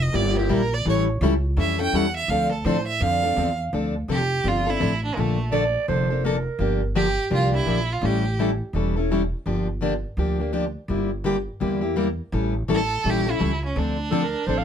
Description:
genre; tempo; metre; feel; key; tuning
acoustic string swing (jazz manouche); 168 BPM; 4/4; swing 60% on 8ths; D minor; A4 = 440 Hz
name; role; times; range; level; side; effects
clear violin; melody; 0.0-8.4, 12.7-14.6 s; G#3 to G5; -26 LUFS; right 4 dB; none
upright bass; bass; 0.0-14.6 s; E1 to A2; -25 LUFS; equal; none
picked plugged-in steel-string acoustic guitar; accompaniment; 0.1-14.6 s; D3 to A4; -24 LUFS; left 3 dB; none
growling clarinet; second line; 5.5-6.9, 14.1-14.6 s; A4 to F5; -26 LUFS; right 6 dB; none
room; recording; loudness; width
light reverb; close, detailed microphones; -21 LUFS; side -8 dB against mid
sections
0.0-3.7 A section; 3.7-14.6 B section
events
violin solo 0.0-3.7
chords
0.0 Em7b5; 0.9 A7; 2.3 Dm7; 5.2 Bbmaj7; 6.6 Gm7; 8.0 A7; 9.5 Gm7; 10.9 Em7b5/G; 12.3 A7; 13.8 Dm7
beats
0.14 0.50 | 0.86 1.22 1.58 1.94 | 2.30 2.65 3.01 3.37 | 3.73 4.09 4.45 4.81 | 5.17 5.52 5.88 6.24 | 6.60 6.96 7.31 7.67 | 8.03 8.39 8.74 9.10 | 9.46 9.82 10.17 10.53 | 10.89 11.25 11.61 11.96 | 12.32 12.68 13.04 13.39 | 13.75 14.11 14.47

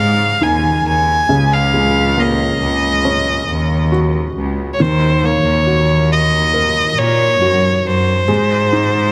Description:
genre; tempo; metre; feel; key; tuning
pop ballad; 68 BPM; 4/4; straight; unclear; A4 = 441 Hz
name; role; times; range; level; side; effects
warm violin; melody; 0.0-9.1 s; C5 to Ab5; -18 LUFS; equal; none
felt-muted upright piano; accompaniment; 0.0-9.1 s; Db3 to Bb4; -21 LUFS; equal; none
rich chamber cello section; bass; 0.0-9.1 s; Db2 to Bb2; -20 LUFS; equal; none
room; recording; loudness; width
light reverb, small room ambience; none; -15 LUFS; mono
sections
0.0-9.1 A section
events
none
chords
0.0 Dbsus2; 1.3 Gbadd9/Db; 4.8 Ebm7; 8.3 Ab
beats
0.41 | 1.29 2.17 3.05 3.92 | 4.80 5.67 6.54 7.41 | 8.29

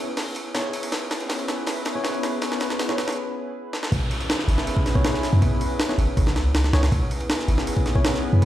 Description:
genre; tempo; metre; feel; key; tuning
drum and bass, jungle; 160 BPM; 4/4; straight; C# minor; A4 = 440 Hz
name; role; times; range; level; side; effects
crunchy breakbeat drum kit; drums; 0.2-3.1 s; hi-hat, snare drum; -37 LUFS; left 1 dB; none
jungle sampler-style drum kit; drums; 0.2-8.4 s; hi-hat, kick drum, ride cymbal, snare drum; -24 LUFS; equal; high-pass filter on kick, high-pass filter on snare, high-pass filter on cymbals, high-pass filter on hats, high-pass filter on room
tine electric piano; stabs; 0.5-8.4 s; B3 to C#5; -31 LUFS; equal; medium stereo tremolo, dub echo
warbly tape-like pad; sustained chords; 0.7-8.4 s; B3 to B4; -29 LUFS; left 1 dB; chorus, built-in reverb
warm 808-style bass; bass; 3.9-8.4 s; G#1 to F#2; -19 LUFS; equal; none
downlifter; sound effects; 3.9-6.9 s; none; -35 LUFS; equal; none
room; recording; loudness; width
light reverb; played on a big sound system in a bare room, large studio reverb; -21 LUFS; side -13 dB against mid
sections
0.0-3.9 A section; 3.9-8.4 B section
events
build-up 0.0-3.9; drum fill 0.0-3.2, 3.7; filter sweep on ambient pad 0.0-3.9; break 3.2-3.9; drop 3.9-8.4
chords
0.0 C#m7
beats
0.17 0.55 | 0.92 1.30 1.67 2.05 | 2.42 2.80 3.17 3.55 | 3.92 4.30 4.67 5.05 | 5.42 5.80 6.17 6.55 | 6.92 7.30 7.67 8.05 | 8.42

